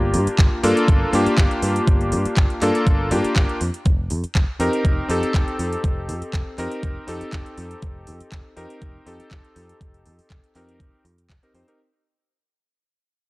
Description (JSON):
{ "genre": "nu-disco, nu disco", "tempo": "121 BPM", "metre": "4/4", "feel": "swing 54% on 16ths", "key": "unclear", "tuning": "A4 = 439 Hz", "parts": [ { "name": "bright electric grand piano", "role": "accompaniment", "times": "0.0-11.8 s", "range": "Bb3 to C5", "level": "-22 LUFS", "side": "left 1 dB", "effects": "sidechain pumping, low-pass filter" }, { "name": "picked electric bass", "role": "bass", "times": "0.0-11.6 s", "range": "F1 to G2", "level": "-25 LUFS", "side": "equal", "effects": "tube saturation" }, { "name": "house drum kit", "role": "drums", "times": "0.1-11.8 s", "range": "handclaps, hi-hat", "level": "-29 LUFS", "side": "right 1 dB", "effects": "none" }, { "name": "electronic kick drum", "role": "drums", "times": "0.4-11.4 s", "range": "none", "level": "-18 LUFS", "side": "equal", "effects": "none" } ], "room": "little or no reverb", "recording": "dry, gritty hardware recording, cassette tape", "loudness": "-18 LUFS", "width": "side -21 dB against mid", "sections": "0.0-11.8 A section", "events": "fade-out 0.0-11.8", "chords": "0.0 Gm7; 3.6 F7sus4", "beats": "0.39 0.88 1.38 | 1.87 2.37 2.87 3.36 | 3.86 4.35 4.85 5.34 | 5.84 6.34 6.83 7.33 | 7.82 8.32 8.82 9.31 | 9.81 10.30 10.80 11.30" }